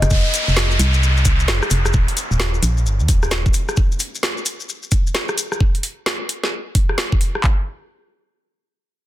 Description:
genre	UK garage, two-step garage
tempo	131 BPM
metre	4/4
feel	swing 63% on 16ths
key	F minor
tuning	A4 = 440 Hz
part	organ-like FM bass	bass	0.0-3.5 s	Eb1 to Eb2	-17 LUFS	equal	none
part	garage drum kit	drums	0.0-7.4 s	hi-hat, rim click, snare drum	-22 LUFS	equal	none
part	maracas	percussion	0.0-5.6 s	none	-28 LUFS	left 5 dB	none
part	garage drum kit	drums	0.1-7.6 s	handclaps, kick drum	-16 LUFS	equal	none
part	downlifter	sound effects	0.1-3.8 s	none	-24 LUFS	equal	none
room	little or no reverb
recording	dense, heavily limited modern master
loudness	-16 LUFS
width	side -14 dB against mid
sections	0.1-7.4 A section; 7.4-9.1 B section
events	none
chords	none

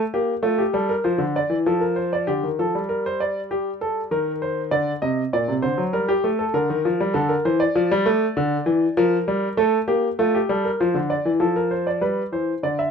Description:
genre	classical, baroque-style two-part invention for grand piano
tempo	98 BPM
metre	4/4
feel	straight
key	G minor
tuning	A4 = 440 Hz
part	clear grand piano	solo	0.1-12.9 s	Bb2 to E5	-19 LUFS	equal	none
room	light reverb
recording	none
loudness	-19 LUFS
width	side -6 dB against mid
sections	0.0-2.3 A section; 2.3-12.0 B section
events	none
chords	0.0 Gm9; 1.1 Dm; 2.3 Gm/D; 3.5 Am7b5/G; 4.7 D7; 5.9 Gm; 7.2 Dm; 8.4 Em7b5/D; 9.6 Gm9; 10.8 Dm; 12.0 G

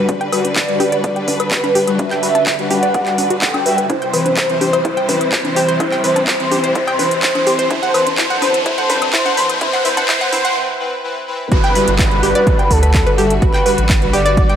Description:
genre	progressive house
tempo	126 BPM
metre	4/4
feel	straight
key	G major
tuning	A4 = 440 Hz
part	expressive synth lead	melody	0.0-14.6 s	A4 to G5	-18 LUFS	right 1 dB	ensemble chorus, cassette tape, sidechain pumping, tape echo
part	clear studio string section	sustained chords	0.0-14.6 s	C3 to C5	-24 LUFS	equal	sidechain pumping
part	soft supersaw	stabs	0.0-14.5 s	E3 to E5	-22 LUFS	left 3 dB	sidechain pumping, tape echo
part	riser and downlifter	sound effects	0.4-14.6 s	none	-25 LUFS	equal	none
part	analog pluck	arpeggios	0.1-14.5 s	E4 to G5	-21 LUFS	equal	chorus, cassette tape, sidechain pumping, tape echo
part	electronic kick drum	drums	0.1-14.5 s	none	-18 LUFS	equal	overdrive, high-pass filter on kick, high-pass filter on room
part	house drum kit	drums	0.1-14.6 s	handclaps, hi-hat	-21 LUFS	equal	overdrive
part	congas, woodblock and cowbell	percussion	0.1-10.4 s	none	-25 LUFS	left 4 dB	sidechain pumping on perc
part	saturated sub bass	bass	11.5-14.5 s	G1 to D2	-18 LUFS	right 1 dB	sidechain pumping
room	moderate lush hall reverb, RT60 1.6 s, digital ambience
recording	high-pass filter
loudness	-13 LUFS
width	side -9 dB against mid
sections	0.0-11.5 A section; 11.5-14.6 B section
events	build-up 0.0-11.5; filter sweep on synth pluck 0.0-11.5; filter sweep on analog synth lead 0.0-11.5; filter sweep 0.0-11.5; riser 0.4-10.6; break 10.6-11.5; drop 11.5-14.6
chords	0.0 Gmaj7; 3.9 Cmaj7; 7.7 D7; 11.5 Gmaj7

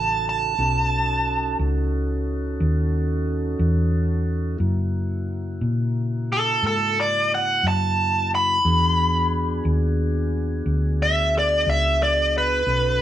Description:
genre	slow blues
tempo	60 BPM (dotted quarters)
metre	12/8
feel	straight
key	unclear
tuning	A4 = 442 Hz
part	smooth overdriven lead guitar	melody	0.0-13.0 s	A4 to B5	-20 LUFS	right 1 dB	none
part	mellow tonewheel organ	sustained chords	0.0-13.0 s	C#3 to A4	-30 LUFS	equal	slow rotary speaker
part	hollow-body short-scale fingered electric bass	bass	0.0-13.0 s	A1 to A#2	-23 LUFS	equal	none
room	moderate stone room reverb, RT60 1.1 s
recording	band playing live in one room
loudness	-19 LUFS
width	side -12 dB against mid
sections	0.0-13.0 A section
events	lead electric guitar solo 0.0-13.0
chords	0.0 B9; 4.6 F#9; 8.6 E9

